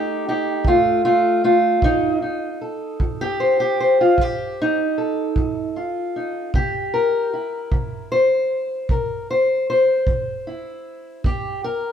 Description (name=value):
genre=acoustic country blues, solo or duo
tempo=51 BPM (dotted quarters)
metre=12/8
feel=straight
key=unclear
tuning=A4 = 440 Hz
part: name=fingerpicked steel-string acoustic guitar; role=melody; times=0.0-11.9 s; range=F2 to C5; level=-18 LUFS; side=equal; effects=none
part: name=kick drum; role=drums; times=0.6-11.4 s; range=none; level=-23 LUFS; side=right 1 dB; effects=none
room=wet stone room reverb, RT60 1.2 s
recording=band playing live in one room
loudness=-18 LUFS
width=side -8 dB against mid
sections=0.0-11.9 A section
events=none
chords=0.0 F7; 6.5 C7; 11.2 N.C.